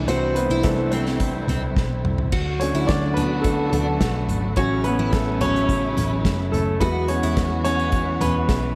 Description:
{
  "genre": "piano-driven pop",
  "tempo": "107 BPM",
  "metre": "4/4",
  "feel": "straight",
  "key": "unclear",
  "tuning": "A4 = 436 Hz",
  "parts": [
    { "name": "clear concert grand piano", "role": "accompaniment", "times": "0.0-8.8 s", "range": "E3 to D5", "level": "-26 LUFS", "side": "equal", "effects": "none" },
    { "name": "warm studio string section", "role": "sustained chords", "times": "0.0-8.8 s", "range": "C3 to F#4", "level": "-31 LUFS", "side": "equal", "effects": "none" },
    { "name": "vintage muted picked electric bass", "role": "bass", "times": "0.0-8.8 s", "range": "F#1 to E2", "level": "-28 LUFS", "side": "equal", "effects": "none" },
    { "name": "picked steel-string acoustic guitar", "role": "riff", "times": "0.1-8.3 s", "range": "C4 to F#4", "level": "-31 LUFS", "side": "equal", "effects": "analog chorus" },
    { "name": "unplugged drum kit", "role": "drums", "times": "0.1-8.6 s", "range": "crash cymbal, hi-hat, kick drum, snare drum, toms", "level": "-28 LUFS", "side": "equal", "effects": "none" }
  ],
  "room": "moderate plate reverb, RT60 2.1 s",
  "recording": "dreamy mix soaked in reverb",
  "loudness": "-22 LUFS",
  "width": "mono",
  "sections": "0.0-8.8 A section",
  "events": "grand piano solo 0.0-8.8; drum fill 1.8-2.3",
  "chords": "0.0 C6; 2.3 D; 4.6 A6; 6.8 Eadd9"
}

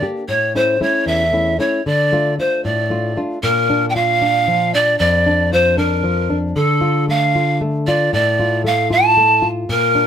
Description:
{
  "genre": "andean folk, Andean ensemble",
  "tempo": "77 BPM (dotted quarters)",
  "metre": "6/8",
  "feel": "straight",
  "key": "D minor",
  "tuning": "A4 = 440 Hz",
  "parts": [
    { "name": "breathy pan flute", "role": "melody", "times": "0.0-10.1 s", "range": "A4 to A5", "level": "-15 LUFS", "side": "right 1 dB", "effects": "none" },
    { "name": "nylon-string guitar", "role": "accompaniment", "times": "0.0-10.1 s", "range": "E2 to G4", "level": "-19 LUFS", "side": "left 2 dB", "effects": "none" }
  ],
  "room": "light reverb",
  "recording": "none",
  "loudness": "-14 LUFS",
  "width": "side -8 dB against mid",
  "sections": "0.0-3.4 A section; 3.4-10.1 B section",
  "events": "none",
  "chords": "0.3 A; 1.9 Dm; 3.4 Bb; 6.6 Dm"
}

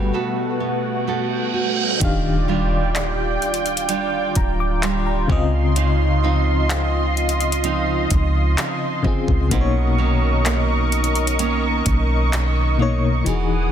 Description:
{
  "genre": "contemporary R&B",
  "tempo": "64 BPM",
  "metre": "4/4",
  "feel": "straight",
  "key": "unclear",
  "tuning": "A4 = 440 Hz",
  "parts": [
    { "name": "FM electric piano with tremolo", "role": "accompaniment", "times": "0.0-13.7 s", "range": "B2 to D6", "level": "-25 LUFS", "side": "left 6 dB", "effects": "none" },
    { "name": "lush unison pad", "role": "sustained chords", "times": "0.0-13.7 s", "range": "B2 to D#6", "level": "-24 LUFS", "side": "equal", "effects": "chorus, sidechain pumping" },
    { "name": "nylon-string guitar", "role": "arpeggios", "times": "0.0-13.7 s", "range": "B2 to A4", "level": "-26 LUFS", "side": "right 9 dB", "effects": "ping-pong delay" },
    { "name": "soft 808-style bass", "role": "bass", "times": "0.0-13.7 s", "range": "D1 to Db3", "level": "-20 LUFS", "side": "equal", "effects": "none" },
    { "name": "reverse cymbal and impact", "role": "sound effects", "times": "0.9-5.8 s", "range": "none", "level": "-27 LUFS", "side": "right 3 dB", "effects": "none" },
    { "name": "smooth R&B drum kit", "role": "drums", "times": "2.0-13.5 s", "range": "handclaps, hi-hat, kick drum", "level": "-24 LUFS", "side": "equal", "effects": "none" },
    { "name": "mallet-like synth pluck", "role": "texture", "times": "3.0-9.9 s", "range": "D5 to F5", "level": "-37 LUFS", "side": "left 1 dB", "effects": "none" }
  ],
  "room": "digital ambience",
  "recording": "dense, heavily limited modern master",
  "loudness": "-17 LUFS",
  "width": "side -9 dB against mid",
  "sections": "0.0-2.0 A section; 2.0-13.7 B section",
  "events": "reverse cymbal 0.9-2.0; impact 2.0-5.8",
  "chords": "0.0 Gmaj9; 2.0 Ebmaj9; 5.3 Dbmaj9; 9.5 Bmaj9"
}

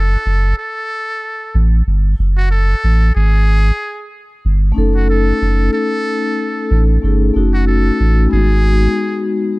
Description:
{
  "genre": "hip hop, boom-bap hip-hop",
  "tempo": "93 BPM",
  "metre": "4/4",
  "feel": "swing 56% on 16ths",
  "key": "F# dorian",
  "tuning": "A4 = 440 Hz",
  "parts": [
    { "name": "trumpet with metal mute", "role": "melody", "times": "0.0-9.3 s", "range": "F#4 to A4", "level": "-22 LUFS", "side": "equal", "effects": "analog delay" },
    { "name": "saturated sub bass", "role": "bass", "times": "0.0-8.9 s", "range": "F#1 to A1", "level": "-12 LUFS", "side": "equal", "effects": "none" },
    { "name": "vibraphone with soft mallets", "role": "accompaniment", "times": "4.7-9.6 s", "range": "G#3 to A4", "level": "-17 LUFS", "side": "left 3 dB", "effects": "cassette tape" }
  ],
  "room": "small room ambience",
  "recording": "dark, warm production",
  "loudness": "-12 LUFS",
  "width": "side -22 dB against mid",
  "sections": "0.0-9.6 A section",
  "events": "break 0.0-4.8",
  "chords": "0.0 F#m; 3.2 N.C.; 4.8 F#m6; 8.3 G#m7"
}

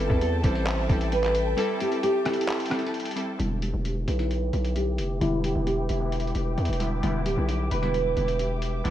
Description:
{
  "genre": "hip hop, trap",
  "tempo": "132 BPM",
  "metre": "4/4",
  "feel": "half-time",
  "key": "E minor",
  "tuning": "A4 = 440 Hz",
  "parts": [
    { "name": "nylon-string guitar", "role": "melody", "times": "0.0-8.9 s", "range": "E4 to C5", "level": "-29 LUFS", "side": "right 1 dB", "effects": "lush chorus, low-pass filter, diffuse ambient delay" },
    { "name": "glassy digital keys", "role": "accompaniment", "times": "0.0-8.9 s", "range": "D3 to A4", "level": "-31 LUFS", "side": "equal", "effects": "chorus, low-pass filter" },
    { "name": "warm symphonic string section", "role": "sustained chords", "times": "0.0-8.9 s", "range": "A4 to D6", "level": "-35 LUFS", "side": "equal", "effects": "low-pass filter" },
    { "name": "distorted 808-style bass", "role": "bass", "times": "0.0-8.9 s", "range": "D1 to E2", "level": "-27 LUFS", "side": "equal", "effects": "distortion" },
    { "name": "lo-fi sampler-style drum kit", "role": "drums", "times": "0.1-8.9 s", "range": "handclaps, hi-hat, kick drum, rim click", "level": "-31 LUFS", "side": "equal", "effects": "none" }
  ],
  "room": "moderate lush hall reverb, RT60 1.8 s",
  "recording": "dreamy mix soaked in reverb",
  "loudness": "-24 LUFS",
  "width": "side -12 dB against mid",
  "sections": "0.0-3.4 A section; 3.4-8.9 B section",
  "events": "break 1.6-3.4; filter sweep 3.4-8.9",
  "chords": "0.0 Am7; 3.4 Em7"
}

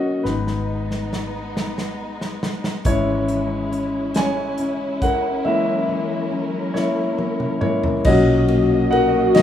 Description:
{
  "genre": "six-eight pop ballad",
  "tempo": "46 BPM (dotted quarters)",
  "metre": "6/8",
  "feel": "straight",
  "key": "G# minor",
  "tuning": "A4 = 442 Hz",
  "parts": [
    { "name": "warm concert grand piano", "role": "accompaniment", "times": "0.0-9.4 s", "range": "A#2 to G#5", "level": "-21 LUFS", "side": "equal", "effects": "none" },
    { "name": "warm studio string section", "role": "sustained chords", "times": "0.0-9.4 s", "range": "D#3 to D#5", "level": "-29 LUFS", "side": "equal", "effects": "none" },
    { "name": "vintage muted fingered electric bass", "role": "bass", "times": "0.0-9.4 s", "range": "G#1 to D#2", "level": "-25 LUFS", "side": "left 1 dB", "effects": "none" },
    { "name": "natural country drum kit", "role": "drums", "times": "0.3-9.4 s", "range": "crash cymbal, hi-hat, kick drum, ride cymbal, snare drum, toms", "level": "-24 LUFS", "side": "equal", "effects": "none" },
    { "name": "fingerpicked plugged-in steel-string acoustic guitar", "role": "arpeggios", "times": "2.8-9.4 s", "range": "E3 to D#4", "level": "-26 LUFS", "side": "left 3 dB", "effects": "none" },
    { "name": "dark French horn section", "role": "second line", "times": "8.1-9.4 s", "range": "F#4", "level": "-20 LUFS", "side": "left 3 dB", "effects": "none" }
  ],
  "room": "small room ambience",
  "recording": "rough home demo mix, studio ambience",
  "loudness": "-18 LUFS",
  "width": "side -10 dB against mid",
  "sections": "0.0-8.1 A section; 8.1-9.4 B section",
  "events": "grand piano solo 0.0-8.1, 8.1-9.4; drum fill 0.2-2.8, 6.8-8.1",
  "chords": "0.2 G#m; 2.8 C#m/G#; 5.5 F#7; 8.1 Bmaj7"
}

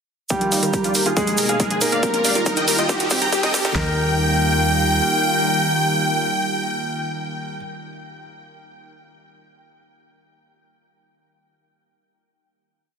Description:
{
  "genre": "uplifting trance",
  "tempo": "139 BPM",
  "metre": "4/4",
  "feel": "straight",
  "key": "Eb major",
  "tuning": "A4 = 438 Hz",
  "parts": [
    { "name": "big supersaw lead", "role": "melody", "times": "0.3-7.5 s", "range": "G4 to Bb5", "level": "-22 LUFS", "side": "equal", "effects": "sidechain pumping, low-pass filter, tape echo" },
    { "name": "clear grand piano", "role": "second line", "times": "0.3-7.6 s", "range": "G3 to Bb4", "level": "-26 LUFS", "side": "equal", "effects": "tape echo" },
    { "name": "lush unison pad", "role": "sustained chords", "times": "0.3-7.6 s", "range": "Cb3 to G4", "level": "-26 LUFS", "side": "equal", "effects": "chorus, sidechain pumping" },
    { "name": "analog pluck", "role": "arpeggios", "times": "0.3-4.0 s", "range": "C4 to Bb4", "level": "-31 LUFS", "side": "right 1 dB", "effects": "chorus, sidechain pumping, tape echo" },
    { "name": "big-room dance drum kit", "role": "drums", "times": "0.3-3.9 s", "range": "handclaps, kick drum, snare drum", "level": "-25 LUFS", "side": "equal", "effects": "overdrive, high-pass filter on kick, high-pass filter on snare" },
    { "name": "electronic hi-hat", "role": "drums", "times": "0.3-3.7 s", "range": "none", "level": "-24 LUFS", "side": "right 1 dB", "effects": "overdrive, high-pass filter on hats" },
    { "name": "egg shaker", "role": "percussion", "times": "0.3-3.7 s", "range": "none", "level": "-27 LUFS", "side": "right 3 dB", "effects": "none" },
    { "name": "riser", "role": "sound effects", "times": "1.7-3.8 s", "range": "none", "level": "-32 LUFS", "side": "equal", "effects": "none" },
    { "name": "plucky analog bass", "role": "bass", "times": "0.4-5.0 s", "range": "Eb1 to Eb2", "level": "-26 LUFS", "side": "equal", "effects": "sidechain pumping, high-pass filter" }
  ],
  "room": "light reverb",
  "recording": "dense, heavily limited modern master, high-pass filter",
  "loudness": "-17 LUFS",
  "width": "side -6 dB against mid",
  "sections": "0.3-3.8 build; 3.8-7.2 final chord",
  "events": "build-up 0.3-3.8; filter sweep on supersaw synth 0.3-3.8; riser 1.7-3.8; drum fill 2.0-3.8",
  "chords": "0.3 Ebadd9; 1.2 Abmadd9/Eb; 2.0 Ebadd9; 2.9 Cm/Eb; 3.8 Ebadd9"
}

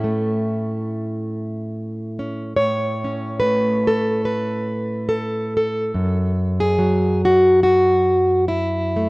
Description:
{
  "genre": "folk, solo fingerstyle acoustic guitar",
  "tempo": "71 BPM",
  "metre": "4/4",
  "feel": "swing 55% on 8ths",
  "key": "A major",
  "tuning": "A4 = 441 Hz",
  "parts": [
    { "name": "fingerpicked plugged-in steel-string acoustic guitar", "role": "solo", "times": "0.0-9.1 s", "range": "F#2 to C#5", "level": "-17 LUFS", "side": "equal", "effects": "none" }
  ],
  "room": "moderate plate reverb, RT60 3.6 s",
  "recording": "worn, warbling old tape, cassette tape, warbly pitch drift, nothing above 10.9 kHz",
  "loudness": "-17 LUFS",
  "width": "side -24 dB against mid",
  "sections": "0.0-2.6 A section; 2.6-9.1 A section",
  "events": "none",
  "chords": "0.0 A; 6.0 F#m"
}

